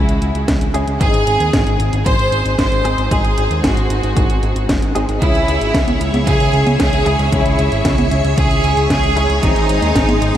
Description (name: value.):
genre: italo disco.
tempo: 114 BPM.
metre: 4/4.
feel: straight.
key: C# harmonic minor.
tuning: A4 = 439 Hz.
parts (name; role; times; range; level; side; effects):
clear studio violin section; melody; 0.0-10.4 s; D#4 to B#4; -19 LUFS; right 1 dB; ping-pong delay, shimmer reverb.
direct-recorded clean electric guitar; stabs; 0.0-10.4 s; G#3 to G#4; -24 LUFS; left 1 dB; ensemble chorus, shimmer reverb.
fat analog bass; bass; 0.0-10.4 s; F#1 to D#2; -18 LUFS; equal; none.
house drum kit; drums; 0.1-10.4 s; congas, hi-hat, snare drum; -22 LUFS; equal; overdrive.
electronic kick drum; drums; 0.5-10.1 s; none; -19 LUFS; equal; none.
string machine, full ensemble; sustained chords; 5.2-10.4 s; G#4 to C#6; -20 LUFS; equal; phaser, ensemble chorus, shimmer reverb.
room: moderate huge ambient reverb, RT60 8.7 s.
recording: dreamy mix soaked in reverb, vinyl crackle.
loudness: -13 LUFS.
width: side -11 dB against mid.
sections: 0.0-10.4 A section.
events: none.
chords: 0.0 C#m; 1.0 G#; 5.2 C#m; 9.4 G#.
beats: 0.48 | 1.01 1.53 2.06 2.59 | 3.11 3.64 4.17 4.69 | 5.22 5.75 6.27 6.80 | 7.32 7.85 8.38 8.90 | 9.43 9.96.